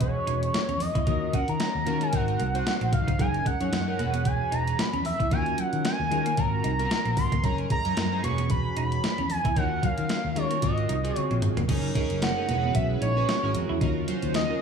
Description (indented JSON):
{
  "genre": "early-eighties boogie funk",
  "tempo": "113 BPM",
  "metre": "4/4",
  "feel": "swing 56% on 16ths",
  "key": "unclear",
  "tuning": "A4 = 440 Hz",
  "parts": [
    { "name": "expressive synth lead", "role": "melody", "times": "0.0-14.6 s", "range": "C#5 to C#6", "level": "-29 LUFS", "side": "right 2 dB", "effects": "chorus, analog delay" },
    { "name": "chorused polysynth", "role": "accompaniment", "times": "0.0-14.6 s", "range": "Cb4 to Db5", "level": "-33 LUFS", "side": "equal", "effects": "none" },
    { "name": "fingered electric bass", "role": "bass", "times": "0.0-14.4 s", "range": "E1 to Eb3", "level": "-28 LUFS", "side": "left 1 dB", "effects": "none" },
    { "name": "crisp 8-bit digital drum machine", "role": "drums", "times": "0.0-14.5 s", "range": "crash cymbal, hi-hat, kick drum, snare drum, toms", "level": "-28 LUFS", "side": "equal", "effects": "overdrive, gated reverb" },
    { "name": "semi-hollow electric guitar", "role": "riff", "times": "0.3-14.4 s", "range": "Gb3 to E4", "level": "-36 LUFS", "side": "right 4 dB", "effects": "lush chorus" },
    { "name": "string machine, violins", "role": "sustained chords", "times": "11.7-14.6 s", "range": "Db3 to F5", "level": "-35 LUFS", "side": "left 1 dB", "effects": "ensemble chorus" }
  ],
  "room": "light reverb, digital ambience",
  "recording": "small room ambience",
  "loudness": "-23 LUFS",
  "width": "side -6 dB against mid",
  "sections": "0.0-11.7 A section; 11.7-14.6 B section",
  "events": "drum fill 11.2-11.7",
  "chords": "0.0 E69; 1.1 Ebm9; 2.1 Ab9; 3.2 Gb6; 4.0 E69; 5.3 Ebm9; 6.4 Ab13; 7.4 Gb6; 8.2 E69; 9.6 Ebm9; 10.6 Ab13; 11.7 Gb6; 12.5 E69; 13.8 Ebm9",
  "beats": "0.01 0.54 | 1.07 1.60 2.13 2.66 | 3.19 3.72 4.25 4.79 | 5.32 5.85 6.38 6.91 | 7.44 7.97 8.50 9.03 | 9.56 10.10 10.63 11.16 | 11.69 12.22 12.75 13.28 | 13.81 14.34"
}